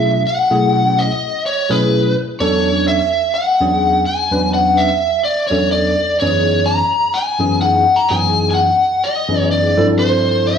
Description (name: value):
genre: jazz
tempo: 126 BPM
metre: 4/4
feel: straight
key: unclear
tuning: A4 = 444 Hz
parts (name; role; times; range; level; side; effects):
- lead guitar through a small cranked amp; melody; 0.0-10.6 s; B4 to A#5; -15 LUFS; left 1 dB; overdrive, slapback echo
- barky tine electric piano; accompaniment; 0.0-10.5 s; E2 to B4; -16 LUFS; equal; ensemble chorus, slapback echo
room: light reverb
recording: live gig heard through the venue's PA, club reverb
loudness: -13 LUFS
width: side -7 dB against mid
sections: 0.0-10.6 A section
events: none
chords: 0.0 B13sus4; 2.4 E13sus4; 6.2 F#13sus4; 9.8 G13sus4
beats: 0.03 | 0.51 0.98 1.46 1.94 | 2.41 2.89 3.36 3.84 | 4.31 4.79 5.26 5.74 | 6.21 6.69 7.16 7.63 | 8.11 8.58 9.06 9.53 | 10.01 10.48